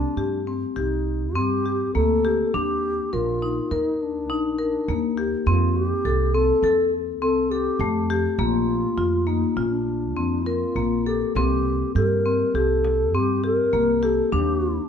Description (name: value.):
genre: contemporary instrumental, chamber music in an uneven meter.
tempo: 102 BPM.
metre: 5/4.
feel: straight.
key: unclear.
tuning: A4 = 440 Hz.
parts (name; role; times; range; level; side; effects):
mellow hollow bass bansuri; melody; 0.0-14.9 s; D4 to Bb4; -25 LUFS; equal; none.
marimba with medium hard mallets; arpeggios; 0.0-14.8 s; A3 to Bb4; -24 LUFS; left 5 dB; none.
upright bass; bass; 0.0-14.8 s; Bb1 to G2; -26 LUFS; right 3 dB; none.
frame drum; percussion; 11.4-13.6 s; none; -37 LUFS; left 3 dB; none.
room: light reverb.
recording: minimal, uncompressed stereo recording.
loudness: -20 LUFS.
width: side -7 dB against mid.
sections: 0.0-14.9 A section.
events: none.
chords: 0.0 Cm; 2.5 Ebmaj7; 5.5 F; 8.4 Bb; 11.4 C5; 14.3 Ebmaj7.